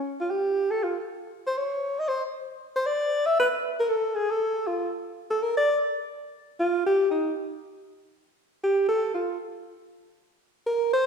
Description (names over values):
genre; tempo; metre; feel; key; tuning
jazz; free time; none; none; G minor from 6.2 s; A4 = 440 Hz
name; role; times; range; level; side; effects
breathy alto saxophone; solo; 0.0-11.1 s; Eb4 to E5; -24 LUFS; equal; none
room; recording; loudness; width
wet recital hall reverb, RT60 1.5 s; recorded in a church or concert hall; -24 LUFS; side -6 dB against mid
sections
0.0-6.2 A section; 6.2-11.1 B section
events
none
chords
none